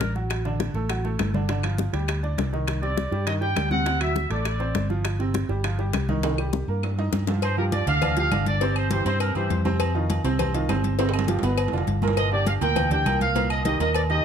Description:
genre	latin, salsa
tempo	202 BPM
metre	4/4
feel	straight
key	C minor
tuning	A4 = 441 Hz
part	clear trumpet section	melody	0.0-0.1, 2.8-4.9, 7.4-9.6, 12.2-14.2 s	Bb4 to G5	-26 LUFS	equal	none
part	bright upright piano	accompaniment	0.0-14.2 s	Bb2 to Eb5	-28 LUFS	right 4 dB	none
part	fingered electric bass	bass	0.0-14.2 s	F1 to G2	-26 LUFS	equal	none
part	bongos and cowbell	percussion	0.0-14.1 s	none	-32 LUFS	left 14 dB	none
part	congas	percussion	0.0-14.2 s	none	-31 LUFS	left 3 dB	none
part	timbales and agogo bells	percussion	0.0-14.2 s	none	-32 LUFS	right 6 dB	none
part	claves	percussion	0.3-14.1 s	none	-37 LUFS	left 12 dB	none
room	light reverb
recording	close, detailed microphones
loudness	-22 LUFS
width	side -8 dB against mid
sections	0.0-7.4 A section; 7.4-14.2 B section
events	drum fill 6.2-7.4, 11.0-12.2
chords	0.3 D/A; 1.5 G5; 2.7 Cmadd9; 3.9 D7; 5.0 G7sus4; 5.6 Cmadd11/G; 6.2 Cm7; 7.4 G5; 8.6 C/G; 9.8 F5; 11.0 G7sus4; 11.6 G7; 12.2 Gm; 13.4 Cm7

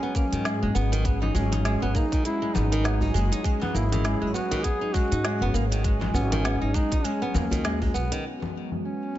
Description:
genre	organic downtempo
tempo	100 BPM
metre	4/4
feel	swing 58% on 16ths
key	G# minor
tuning	A4 = 440 Hz
part	mellow duduk	melody	0.0-9.2 s	C#4 to G#4	-31 LUFS	equal	vintage 12-bit sampler grit, tape echo
part	warm analog pad	sustained chords	0.0-9.2 s	F#3 to G#4	-33 LUFS	equal	chorus, sidechain pumping
part	flamenco guitar	arpeggios	0.0-8.2 s	D#3 to D#4	-30 LUFS	right 1 dB	ping-pong delay
part	electronic kick drum	drums	0.1-7.9 s	none	-25 LUFS	equal	none
part	organic electronic drum kit	drums	0.2-9.2 s	congas, hi-hat, shaker, snare drum	-33 LUFS	left 2 dB	low-pass filter on hats, low-pass filter on perc, low-pass filter on snare
part	djembe	percussion	0.2-9.2 s	none	-35 LUFS	right 1 dB	none
part	upright bass	bass	0.3-8.1 s	F#1 to G#2	-26 LUFS	equal	none
room	light reverb, small room ambience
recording	nothing above 7.8 kHz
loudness	-23 LUFS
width	side -13 dB against mid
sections	0.0-8.2 A section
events	none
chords	0.0 G#m7

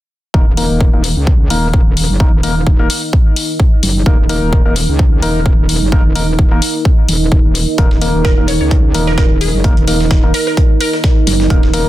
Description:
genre	bass house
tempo	129 BPM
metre	4/4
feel	swing 56% on 16ths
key	unclear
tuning	A4 = 445 Hz
part	percussive organ stab	stabs	0.3-11.9 s	Bb3 to Bb4	-21 LUFS	left 2 dB	chorus, sidechain pumping, ping-pong delay
part	metallic wobble bass	bass	0.3-11.9 s	Eb1 to Db2	-16 LUFS	equal	chorus, tube saturation, sidechain pumping
part	electronic kick drum	drums	0.3-11.6 s	none	-10 LUFS	equal	none
part	deep dark ambient pad	texture	1.9-11.9 s	Eb4 to Eb5	-20 LUFS	right 4 dB	chorus, built-in reverb, sidechain pumping
part	electronic hi-hat	drums	0.6-11.8 s	none	-20 LUFS	left 4 dB	none
part	dusty soul sampler-style drum kit	drums	7.8-11.9 s	hi-hat, snare drum	-27 LUFS	right 1 dB	high-pass filter on hats, high-pass filter on snare
part	glassy wavetable pluck	melody	8.2-11.2 s	Ab4 to Db5	-21 LUFS	right 1 dB	chorus, ping-pong delay
room	light reverb, digital ambience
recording	dense, heavily limited modern master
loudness	-10 LUFS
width	side -15 dB against mid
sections	0.3-11.9 A section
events	none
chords	0.3 Eb5

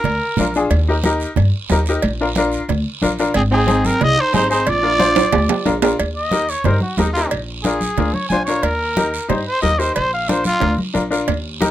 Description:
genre	latin, cumbia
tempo	182 BPM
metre	4/4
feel	straight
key	Eb major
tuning	A4 = 440 Hz
part	growling trumpet	melody	0.0-0.6, 3.4-10.8 s	Eb4 to Ab5	-19 LUFS	equal	none
part	upright bass	bass	0.0-11.7 s	Ab1 to G2	-21 LUFS	equal	none
part	congas	percussion	0.0-11.7 s	none	-23 LUFS	right 2 dB	none
part	cowbell and timbales	percussion	0.1-11.4 s	none	-22 LUFS	right 5 dB	none
part	guiro	percussion	0.1-11.7 s	none	-31 LUFS	right 5 dB	none
part	clear upright piano	accompaniment	0.4-11.7 s	C4 to C5	-20 LUFS	left 3 dB	none
part	bright clarinet	second line	3.4-5.7 s	C4 to Ab4	-23 LUFS	right 5 dB	none
room	light reverb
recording	minimal, uncompressed stereo recording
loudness	-15 LUFS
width	side -12 dB against mid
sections	0.0-6.0 A section; 6.0-11.7 B section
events	drum fill 5.2-6.0; trumpet solo 6.0-11.7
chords	0.0 Bb7; 0.7 Eb; 2.0 Bb; 3.4 Ab; 4.7 Bb; 6.0 Eb; 7.3 Bb7; 8.6 Eb; 10.0 Bb

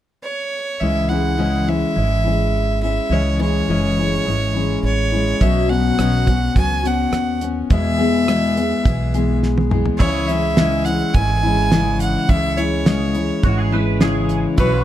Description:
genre	honky-tonk and classic country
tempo	105 BPM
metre	4/4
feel	straight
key	unclear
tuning	A4 = 440 Hz
part	rich fiddle	melody	0.2-14.8 s	B4 to G#5	-22 LUFS	right 2 dB	plate reverb
part	picked steel-string acoustic guitar	accompaniment	0.8-14.8 s	E2 to G#4	-19 LUFS	left 3 dB	none
part	upright bass	bass	0.8-14.8 s	F#1 to E2	-22 LUFS	right 1 dB	none
part	damped 70s drum kit	drums	5.4-14.7 s	crash cymbal, hi-hat, kick drum, rim click, snare drum, toms	-18 LUFS	right 1 dB	none
part	pedal steel guitar	sustained chords	10.0-14.8 s	E4 to C#5	-32 LUFS	left 1 dB	none
part	twangy electric guitar	second line	13.4-14.4 s	F#4 to B4	-26 LUFS	right 4 dB	ensemble chorus, tape echo
room	light reverb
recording	dark, warm production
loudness	-16 LUFS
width	side -12 dB against mid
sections	0.8-10.0 A section; 10.0-14.8 B section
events	drum fill 9.4-10.0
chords	0.0 N.C.; 0.8 C#m; 5.4 Bsus2; 7.7 E; 10.0 C#m

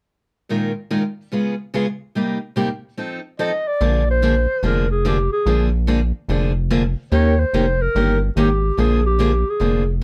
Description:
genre	acoustic string swing (jazz manouche)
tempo	145 BPM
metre	4/4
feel	swing 64% on 8ths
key	Bb mixolydian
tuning	A4 = 439 Hz
part	picked steel-string acoustic guitar	accompaniment	0.5-9.8 s	Bb2 to Bb4	-23 LUFS	equal	none
part	breathy clarinet	melody	3.4-9.9 s	G4 to Eb5	-23 LUFS	equal	none
part	rubbery square bass	bass	3.8-10.0 s	F1 to Eb2	-21 LUFS	equal	none
room	light reverb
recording	dark, warm production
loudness	-19 LUFS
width	mono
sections	0.5-3.8 A section; 3.8-10.0 B section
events	none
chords	0.5 Bb7sus4; 1.3 Db7; 2.1 Cm7; 3.0 F7; 3.8 Bb7; 7.1 Eb7; 8.8 Bb7

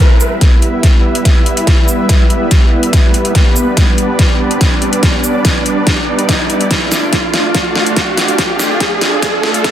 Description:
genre	heavy wobble dubstep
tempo	143 BPM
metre	4/4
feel	half-time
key	E phrygian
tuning	A4 = 440 Hz
part	supersaw pad	sustained chords	0.0-9.7 s	G3 to F5	-16 LUFS	right 1 dB	sidechain pumping
part	riser	sound effects	0.0-9.7 s	none	-19 LUFS	right 1 dB	none
part	dubstep drum kit	drums	0.2-9.7 s	hi-hat, shaker, snare drum	-16 LUFS	equal	overdrive, high-pass filter on hats, high-pass filter on snare, high-pass filter on perc, high-pass filter on room
part	electronic kick drum	drums	0.4-9.7 s	none	-11 LUFS	equal	overdrive
room	moderate digital room reverb, RT60 1.2 s, digital ambience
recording	dense, heavily limited modern master, high-pass filter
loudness	-9 LUFS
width	side -11 dB against mid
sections	0.0-9.7 A section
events	build-up 0.0-9.7; drum fill 0.0-9.7; riser 0.0-9.7; filter sweep 0.0-9.7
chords	0.0 Em; 3.4 G; 6.7 Dm

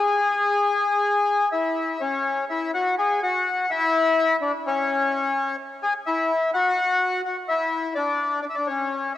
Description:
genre	tango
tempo	126 BPM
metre	4/4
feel	rubato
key	unclear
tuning	A4 = 435 Hz
part	bandoneon	solo	0.0-9.2 s	C#4 to G#5	-20 LUFS	left 2 dB	none
room	wet lush hall reverb, RT60 2.6 s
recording	home recording on cassette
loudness	-20 LUFS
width	side -13 dB against mid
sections	0.0-2.0 A section; 2.0-9.2 B section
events	none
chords	0.1 E; 2.0 C#madd11; 3.0 Eadd9; 3.9 C#m; 4.9 N.C.; 5.8 E; 6.8 Esus2; 7.7 Dsus2; 8.7 N.C.

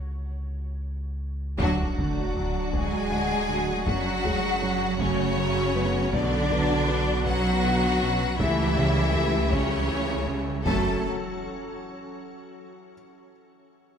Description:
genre	cinematic, hybrid orchestral and electronic film score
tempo	53 BPM (dotted quarters)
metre	6/8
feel	straight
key	F# minor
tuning	A4 = 441 Hz
part	punchy sub bass	bass	0.0-11.1 s	D1 to C#2	-33 LUFS	equal	none
part	clear symphonic violin section	melody	1.6-11.1 s	A4 to G#5	-31 LUFS	left 4 dB	none
part	clear studio violin section	second line	1.6-11.1 s	C#4 to A5	-32 LUFS	left 2 dB	none
part	dark symphonic viola section	accompaniment	1.6-11.1 s	D3 to F#4	-33 LUFS	equal	none
part	mellow French horn section	sustained chords	1.6-11.0 s	F#3 to G4	-33 LUFS	left 3 dB	none
part	soft additive organ-like pad	sustained chords	1.8-11.1 s	E3 to B4	-35 LUFS	right 1 dB	ensemble chorus, built-in reverb
part	smooth gliding synth bass	riff	1.6-10.5 s	C#2 to B3	-32 LUFS	right 2 dB	none
part	rich symphonic double bass section	bass	1.6-11.1 s	B1 to F#2	-32 LUFS	right 3 dB	none
part	warm symphonic cello section	bass	1.6-11.1 s	C#3 to A3	-30 LUFS	right 3 dB	none
part	taiko ensemble	drums	1.6-12.1 s	none	-32 LUFS	equal	none
part	sub drop and impact	sound effects	1.6-3.9, 10.7-12.9 s	none	-34 LUFS	equal	none
part	felt-muted upright piano	texture	3.1-10.7 s	G#3 to F#5	-38 LUFS	left 2 dB	none
room	moderate scoring stage reverb, RT60 1.6 s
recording	none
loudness	-23 LUFS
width	side -7 dB against mid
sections	0.0-1.6 A section; 1.6-10.7 B section; 10.7-12.9 C section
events	break 0.0-1.6; drum fill 0.5-1.6; band accent 1.6-2.4; impact 1.6-3.9, 10.7-12.9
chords	0.0 N.C.; 1.6 D; 3.9 F#m; 6.1 Bmadd9; 8.4 A7/C#; 10.7 F#m

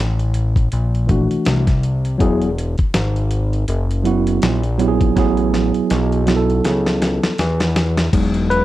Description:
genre	hip hop, jazz-hop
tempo	81 BPM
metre	4/4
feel	swing 57% on 16ths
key	E major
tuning	A4 = 440 Hz
part	fat analog bass	bass	0.0-8.6 s	E1 to E2	-18 LUFS	left 1 dB	none
part	dusty soul sampler-style drum kit	drums	0.2-8.6 s	crash cymbal, hi-hat, kick drum, snare drum	-20 LUFS	left 1 dB	none
part	mellow tine electric piano	accompaniment	1.1-8.6 s	E3 to B4	-17 LUFS	moving between left 3 dB and right 8 dB	auto-pan
room	little or no reverb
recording	dry, close 1970s-style studio recording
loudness	-15 LUFS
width	side -15 dB against mid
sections	0.0-8.1 A section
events	drum fill 5.2-8.1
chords	0.0 F#7alt; 2.2 Eadd9; 5.2 Amaj9; 8.1 Emaj9

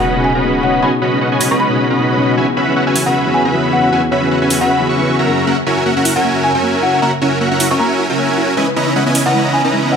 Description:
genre	future bass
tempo	155 BPM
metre	4/4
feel	swing 55% on 16ths, half-time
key	B major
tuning	A4 = 440 Hz
part	folk marimba with medium hard mallets	melody	0.0-10.0 s	C#5 to C#6	-19 LUFS	left 2 dB	dub echo
part	felt-muted upright piano	accompaniment	0.0-5.4 s	F#2 to C#5	-19 LUFS	left 2 dB	ping-pong delay
part	ethereal airy pad	sustained chords	0.0-10.0 s	E2 to D#5	-23 LUFS	right 1 dB	ensemble chorus, built-in reverb
part	dense compressed supersaw	riff	0.0-10.0 s	C#4 to C#6	-14 LUFS	right 1 dB	low-pass filter, ping-pong delay
part	sub drop	sound effects	0.0-0.8 s	none	-26 LUFS	equal	none
part	electronic hi-hat	drums	1.4-9.2 s	none	-19 LUFS	right 2 dB	studio reverb
part	soft round pluck	arpeggios	5.5-10.0 s	G#3 to E5	-22 LUFS	left 3 dB	chorus, ping-pong delay
room	moderate lush hall reverb, RT60 1.6 s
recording	none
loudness	-12 LUFS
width	side -6 dB against mid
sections	0.0-10.0 A section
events	impact 0.0-0.8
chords	0.0 B69; 2.4 E69; 5.3 F#7; 8.6 C#m9

